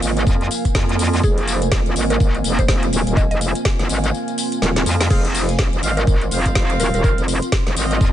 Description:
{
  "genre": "bass house",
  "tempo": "124 BPM",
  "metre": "4/4",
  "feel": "swing 59% on 16ths",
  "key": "F minor",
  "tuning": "A4 = 439 Hz",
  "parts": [
    { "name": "deep dark ambient pad", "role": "sustained chords", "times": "0.0-8.1 s", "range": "C4 to C5", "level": "-27 LUFS", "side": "right 4 dB", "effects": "chorus, built-in reverb, sidechain pumping" },
    { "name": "metallic wobble bass", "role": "bass", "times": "0.0-8.1 s", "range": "Eb1 to F2", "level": "-20 LUFS", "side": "equal", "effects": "chorus, tube saturation, sidechain pumping" },
    { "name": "garage drum kit", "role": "drums", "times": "0.0-8.1 s", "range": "crash cymbal, hi-hat, snare drum, tambourine", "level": "-25 LUFS", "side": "left 1 dB", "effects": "none" },
    { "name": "airy breathy pad", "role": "texture", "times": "0.0-8.1 s", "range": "C4 to C6", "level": "-28 LUFS", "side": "equal", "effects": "chorus, sidechain pumping" },
    { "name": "electronic kick drum", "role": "drums", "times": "0.3-8.1 s", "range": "none", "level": "-18 LUFS", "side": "equal", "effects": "none" },
    { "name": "mallet-like synth pluck", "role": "melody", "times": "1.2-7.7 s", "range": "Ab4 to Eb5", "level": "-28 LUFS", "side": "right 1 dB", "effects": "chorus, tape echo" },
    { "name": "clear horn section", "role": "stabs", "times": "5.1-8.1 s", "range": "C4 to F5", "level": "-26 LUFS", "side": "right 3 dB", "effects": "sidechain pumping, tape echo" }
  ],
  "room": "little or no reverb",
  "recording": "nothing above 10.4 kHz",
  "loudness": "-16 LUFS",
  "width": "side -12 dB against mid",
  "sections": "0.0-8.1 A section",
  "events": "kick drops out 4.1-5.1; drum fill 4.6-5.1",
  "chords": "0.0 F5"
}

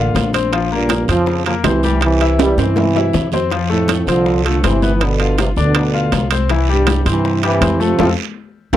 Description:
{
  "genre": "latin, salsa",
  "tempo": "161 BPM",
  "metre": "4/4",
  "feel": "straight",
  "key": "F major",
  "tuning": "A4 = 439 Hz",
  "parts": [
    { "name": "dark trombone section", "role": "melody", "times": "0.0-8.8 s", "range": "E2 to Bb3", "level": "-17 LUFS", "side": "right 2 dB", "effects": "none" },
    { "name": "bright grand piano", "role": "accompaniment", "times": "0.0-8.8 s", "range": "E3 to F5", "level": "-21 LUFS", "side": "left 8 dB", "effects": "none" },
    { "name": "upright bass", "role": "bass", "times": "0.0-8.8 s", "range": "G1 to G2", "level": "-18 LUFS", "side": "equal", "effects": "none" },
    { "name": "congas", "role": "percussion", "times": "0.1-8.8 s", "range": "none", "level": "-24 LUFS", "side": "left 3 dB", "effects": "none" },
    { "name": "bongos", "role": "percussion", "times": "0.2-8.8 s", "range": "none", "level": "-26 LUFS", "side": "left 7 dB", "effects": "none" },
    { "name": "guiro", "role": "percussion", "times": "0.2-8.8 s", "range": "none", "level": "-29 LUFS", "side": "right 18 dB", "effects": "none" },
    { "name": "timbales", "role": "percussion", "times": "0.2-8.8 s", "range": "none", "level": "-20 LUFS", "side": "right 9 dB", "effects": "none" }
  ],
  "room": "light reverb",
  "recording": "dry, close 1970s-style studio recording",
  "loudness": "-13 LUFS",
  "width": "side -12 dB against mid",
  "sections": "0.0-8.8 A section",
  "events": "drum fill 2.4-3.5; band accent 8.0-8.8",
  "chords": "0.0 Dm; 0.5 Bbmadd9; 2.0 C; 3.5 Fadd9; 5.0 G7; 6.5 C; 8.0 F"
}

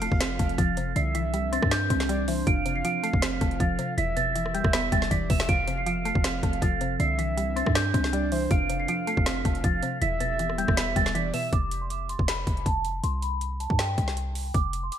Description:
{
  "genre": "hip hop, trap",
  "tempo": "159 BPM",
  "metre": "4/4",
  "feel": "half-time",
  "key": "unclear",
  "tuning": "A4 = 441 Hz",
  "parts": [
    { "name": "large celesta", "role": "melody", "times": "0.0-15.0 s", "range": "G5 to E7", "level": "-30 LUFS", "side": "right 3 dB", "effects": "wide subtle chorus, low-pass filter" },
    { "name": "soft octave-layered synth lead", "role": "second line", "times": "0.0-11.5 s", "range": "C5 to F5", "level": "-33 LUFS", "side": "right 3 dB", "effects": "chorus, digital delay" },
    { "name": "mallet-like synth pluck", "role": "accompaniment", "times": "0.0-11.5 s", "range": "E2 to D4", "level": "-31 LUFS", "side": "left 3 dB", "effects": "chorus, low-pass filter" },
    { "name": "warbly tape-like pad", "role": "sustained chords", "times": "0.0-11.5 s", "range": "E3 to A4", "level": "-35 LUFS", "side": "right 3 dB", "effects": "chorus, built-in reverb" },
    { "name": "warm 808-style bass", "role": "bass", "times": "0.0-14.9 s", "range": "E1 to G2", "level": "-30 LUFS", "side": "equal", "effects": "none" },
    { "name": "trap drum kit", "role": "drums", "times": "0.0-15.0 s", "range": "hi-hat, kick drum, rim click, snare drum", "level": "-27 LUFS", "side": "equal", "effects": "gated reverb" }
  ],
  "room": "little or no reverb",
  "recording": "bright 1980s-style digital production",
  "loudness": "-23 LUFS",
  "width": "side -10 dB against mid",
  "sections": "0.0-11.5 A section; 11.5-15.0 B section",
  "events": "drum fill 5.1-5.5; filter sweep 11.5-15.0",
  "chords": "0.0 F; 1.0 Cadd9; 2.5 F; 4.0 Em; 5.5 F; 7.0 Cadd9; 8.5 F; 10.0 Em; 11.5 F; 13.0 C5"
}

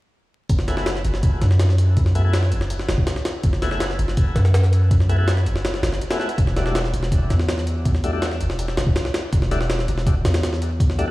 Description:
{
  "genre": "drum and bass, jungle",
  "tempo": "163 BPM",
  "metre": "4/4",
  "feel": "straight",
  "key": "F# minor",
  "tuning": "A4 = 439 Hz",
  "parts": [
    { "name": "long sustained 808-style bass", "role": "bass", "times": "0.5-11.1 s", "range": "E1 to F#2", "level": "-20 LUFS", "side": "equal", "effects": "none" },
    { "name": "jungle sampler-style drum kit", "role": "drums", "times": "0.5-11.1 s", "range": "hi-hat, kick drum, snare drum", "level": "-22 LUFS", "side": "equal", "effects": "none" },
    { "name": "tonewheel organ", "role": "stabs", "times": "0.7-11.1 s", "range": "G3 to G#4", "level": "-29 LUFS", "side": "left 2 dB", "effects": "slow rotary speaker, dub echo" }
  ],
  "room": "light reverb, digital ambience",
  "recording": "played on a big sound system in a bare room, stone room reverb, vinyl crackle",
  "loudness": "-18 LUFS",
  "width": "side -18 dB against mid",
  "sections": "0.5-11.1 A section",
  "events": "none",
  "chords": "0.5 F#m11; 6.4 Em11"
}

